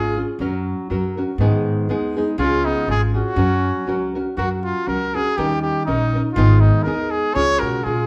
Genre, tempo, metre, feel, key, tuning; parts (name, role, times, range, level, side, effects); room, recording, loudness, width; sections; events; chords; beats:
mexican folk, mariachi; 120 BPM; 2/4; swing 54% on 8ths, rubato; F# major; A4 = 444 Hz
clear trumpet; melody; 0.0-0.3, 2.4-8.1 s; D#4 to C#5; -24 LUFS; equal
warm trumpet; second line; 0.0-0.3, 2.4-4.1, 7.3-8.1 s; B3 to G#4; -31 LUFS; equal
nylon-string guitar; accompaniment; 0.0-8.1 s; G#2 to A#4; -24 LUFS; equal
upright bass; bass; 0.0-8.1 s; G#1 to B2; -23 LUFS; equal
wet stone room reverb, RT60 0.9 s; band playing live in one room; -20 LUFS; mono
0.0-4.4 A section; 4.4-8.1 A section
0.4 F#; 1.4 G#m; 2.4 C#; 3.4 F#; 5.4 D#7; 6.4 G#m; 7.4 C#
| 0.39 0.90 | 1.39 1.87 | 2.37 2.86 | 3.36 3.87 | 4.38 4.88 | 5.38 5.88 | 6.37 6.86 | 7.35 7.85